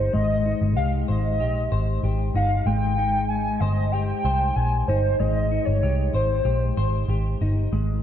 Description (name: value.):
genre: indie pop, bedroom pop.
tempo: 95 BPM.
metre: 4/4.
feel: straight.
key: Ab major.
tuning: A4 = 445 Hz.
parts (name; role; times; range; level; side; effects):
warbly nostalgic lead; melody; 0.0-7.1 s; C5 to Ab5; -26 LUFS; equal; tremolo, analog chorus, ping-pong delay.
clean electric guitar; accompaniment; 0.0-8.0 s; Ab3 to C5; -29 LUFS; left 6 dB; lush chorus, vibrato effect.
vintage muted picked electric bass; bass; 0.0-8.0 s; G1 to C2; -23 LUFS; equal; none.
room: moderate scoring stage reverb, RT60 2.0 s.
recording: dark, warm production.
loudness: -20 LUFS.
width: side -10 dB against mid.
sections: 0.0-7.7 A section.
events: none.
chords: 0.0 Abmaj7/G.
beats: | 0.15 0.78 1.41 2.04 | 2.67 3.30 3.93 4.57 | 5.20 5.83 6.46 7.09 | 7.72.